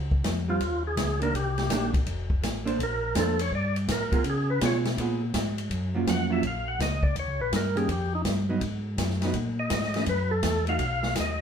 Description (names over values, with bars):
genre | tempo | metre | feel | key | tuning
soul jazz organ trio | 165 BPM | 4/4 | swing 65% on 8ths | F# major from 5.7 s | A4 = 440 Hz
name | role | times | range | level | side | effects
mellow tonewheel organ | bass | 0.0-11.4 s | F1 to Db3 | -29 LUFS | equal | slow rotary speaker
open jazz drum kit | drums | 0.1-11.3 s | hi-hat, kick drum, ride cymbal, snare drum | -30 LUFS | left 1 dB | none
percussive tonewheel organ | melody | 0.5-11.4 s | D#4 to F#5 | -29 LUFS | equal | slow rotary speaker
vintage hollow-body jazz guitar | accompaniment | 0.5-10.8 s | Eb3 to C5 | -30 LUFS | right 4 dB | none
room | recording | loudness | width
moderate studio reverb, RT60 0.8 s | heard from further back in the room | -24 LUFS | side -7 dB against mid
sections
0.0-5.7 A section; 5.7-11.4 A section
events
tonewheel organ solo 0.0-11.4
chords
0.0 Dbadd9; 1.3 Cm9; 2.1 F; 2.8 Bbmaj9; 4.3 Db7; 5.7 F#maj7; 7.2 D#7; 8.6 G#7(no3); 10.1 F#m7; 10.8 B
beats
0.25 0.61 0.98 | 1.34 1.70 2.07 2.43 | 2.80 3.16 3.52 3.89 | 4.25 4.62 4.98 5.34 | 5.71 6.07 6.44 6.80 | 7.16 7.53 7.89 8.26 | 8.62 8.98 9.35 9.71 | 10.08 10.44 10.81 11.17